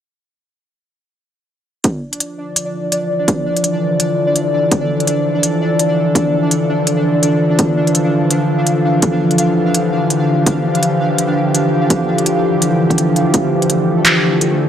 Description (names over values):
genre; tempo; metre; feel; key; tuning
half-time drum and bass; 167 BPM; 4/4; swing 58% on 16ths, half-time; D minor; A4 = 438 Hz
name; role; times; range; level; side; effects
bowed-like drone; sustained chords; 2.5-14.7 s; D3 to A4; -15 LUFS; equal; built-in reverb, vintage 12-bit sampler grit, sidechain pumping
electronic kick drum; drums; 1.8-13.4 s; none; -17 LUFS; equal; high-pass filter on kick
industrial drum kit; drums; 1.8-14.5 s; handclaps, hi-hat; -15 LUFS; equal; none
pulsing gated texture; texture; 2.2-14.7 s; A3 to F5; -19 LUFS; equal; chorus, built-in reverb
room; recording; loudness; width
wet lush hall reverb, RT60 1.9 s, digital ambience; dry, gritty hardware recording, cassette tape; -13 LUFS; side -9 dB against mid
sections
1.8-14.7 A section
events
none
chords
1.8 Dmadd9